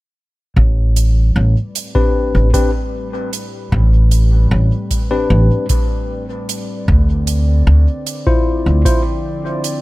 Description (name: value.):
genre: ambient dub.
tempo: 76 BPM.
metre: 4/4.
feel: straight.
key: A minor.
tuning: A4 = 440 Hz.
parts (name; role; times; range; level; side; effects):
warm analog pad; sustained chords; 0.6-9.8 s; A2 to D5; -28 LUFS; equal; chorus.
upright bass; bass; 0.6-8.8 s; A1 to D2; -11 LUFS; equal; tube saturation.
electronic kick drum; drums; 0.6-9.0 s; none; -18 LUFS; equal; none.
hi-hat; drums; 1.0-9.8 s; none; -26 LUFS; right 8 dB; none.
tine electric piano; stabs; 1.9-9.0 s; C4 to C5; -20 LUFS; left 3 dB; dub echo.
room: small room ambience.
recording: none.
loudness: -13 LUFS.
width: side -19 dB against mid.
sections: 0.6-9.8 A section.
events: fade-in on analog synth pad 0.6-9.8.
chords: 0.6 Am11; 6.9 Dm7.